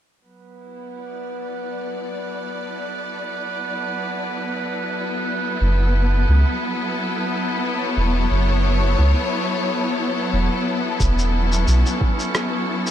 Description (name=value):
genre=ambient dub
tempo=89 BPM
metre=4/4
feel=swing 54% on 16ths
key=unclear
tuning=A4 = 438 Hz
part: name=clear symphonic string section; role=sustained chords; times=0.2-12.9 s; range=F#3 to D5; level=-24 LUFS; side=left 2 dB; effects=none
part: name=drifting glass-harmonics texture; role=texture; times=0.5-12.9 s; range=B3 to C#6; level=-28 LUFS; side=right 2 dB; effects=chorus, built-in reverb
part: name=soft dub sub bass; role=bass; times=5.6-11.8 s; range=E1 to C#2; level=-17 LUFS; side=equal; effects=none
part: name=electronic kick drum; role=drums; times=11.0-12.2 s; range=none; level=-20 LUFS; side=equal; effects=small room reverb
part: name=electronic shaker and rim click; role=drums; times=11.0-12.9 s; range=none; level=-26 LUFS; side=equal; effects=small room reverb, dub echo
room=light reverb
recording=none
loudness=-19 LUFS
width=side -10 dB against mid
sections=0.2-11.0 A section; 11.0-12.9 B section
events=fade-in on string section 0.2-11.0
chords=0.2 E5; 5.6 F#m7; 11.0 E5